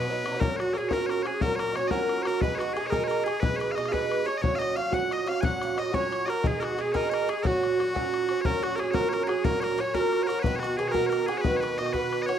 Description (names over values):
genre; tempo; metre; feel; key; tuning
celtic folk, Celtic jig; 120 BPM (dotted quarters); 6/8; straight; F# major; A4 = 437 Hz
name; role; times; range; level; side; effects
loud bright bagpipes; melody; 0.0-12.4 s; F#4 to G#5; -30 LUFS; left 1 dB; none
mandolin; second line; 0.0-12.4 s; F#4 to F#5; -37 LUFS; right 3 dB; none
musette accordion; second line; 0.0-12.4 s; F#4 to F#5; -33 LUFS; left 5 dB; none
Irish bouzouki; accompaniment; 0.0-12.4 s; A#2 to G#4; -28 LUFS; right 6 dB; none
bodhran; percussion; 0.3-12.4 s; none; -32 LUFS; left 4 dB; none
room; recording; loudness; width
small room ambience; dry, close 1970s-style studio recording; -24 LUFS; side -9 dB against mid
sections
0.4-8.4 A section; 8.4-12.4 A section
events
none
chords
0.4 F#; 2.4 G#m; 4.4 F#; 6.4 G#m; 7.4 F#; 10.4 B